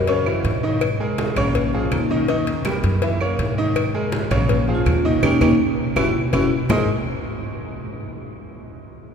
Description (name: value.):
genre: latin, salsa.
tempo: 163 BPM.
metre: 4/4.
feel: straight.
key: unclear.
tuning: A4 = 444 Hz.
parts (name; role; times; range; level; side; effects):
vibraphone with medium mallets; melody; 0.0-6.9 s; Bb3 to Bb4; -24 LUFS; left 2 dB; none.
upright bass; bass; 0.0-6.9 s; Gb1 to Ab2; -24 LUFS; equal; none.
clear concert grand piano; accompaniment; 0.1-6.9 s; Db3 to Fb5; -24 LUFS; right 2 dB; none.
congas; percussion; 0.1-6.8 s; none; -27 LUFS; right 1 dB; none.
cowbell and bongos; percussion; 0.1-6.8 s; none; -28 LUFS; left 7 dB; none.
claves; percussion; 0.3-6.8 s; none; -31 LUFS; right 4 dB; none.
room: wet cathedral reverb, RT60 7.0 s.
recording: recorded in a church or concert hall.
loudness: -18 LUFS.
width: side -7 dB against mid.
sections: 0.8-6.7 A section; 6.7-8.2 B section.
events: band accent 5.2-6.7; drum fill 5.6-6.7.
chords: 0.1 Gb5; 0.8 Absus2; 1.6 Bbm7; 2.3 Eb; 3.0 Gb7; 3.8 Absus2; 4.5 Bbm7; 5.2 Eb7; 6.0 Gb5; 6.7 Abadd9.